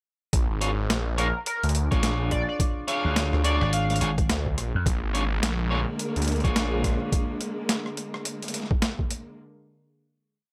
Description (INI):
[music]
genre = glitch hop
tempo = 106 BPM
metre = 4/4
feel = swing 60% on 16ths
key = unclear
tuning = A4 = 442 Hz
[part]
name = phased detuned saw bass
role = bass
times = 0.3-7.0 s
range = Ab1 to D2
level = -29 LUFS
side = equal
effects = phaser
[part]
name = boom bap sampler-style drum kit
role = drums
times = 0.3-9.2 s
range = hi-hat, rim click, snare drum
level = -32 LUFS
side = equal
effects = overdrive
[part]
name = electronic kick drum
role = drums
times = 0.3-9.1 s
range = none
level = -28 LUFS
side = equal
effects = overdrive
[part]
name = electric guitar at the edge of break-up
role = stabs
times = 0.6-7.4 s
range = D4 to C#5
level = -33 LUFS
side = equal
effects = sidechain pumping, delay
[part]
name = sync lead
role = melody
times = 1.2-4.0 s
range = Bb4 to F5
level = -33 LUFS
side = equal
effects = analog chorus, cassette tape, delay
[part]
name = vintage slap bass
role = bass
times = 3.0-4.8 s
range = Ab1 to F2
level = -28 LUFS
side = equal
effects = none
[part]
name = warm symphonic string section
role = sustained chords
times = 4.9-9.3 s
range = D3 to Bb3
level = -35 LUFS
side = equal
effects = sidechain pumping
[sound]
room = light reverb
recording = none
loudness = -26 LUFS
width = mono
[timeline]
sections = 0.3-9.4 drop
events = drop 0.3-9.4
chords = 0.3 Bb7#9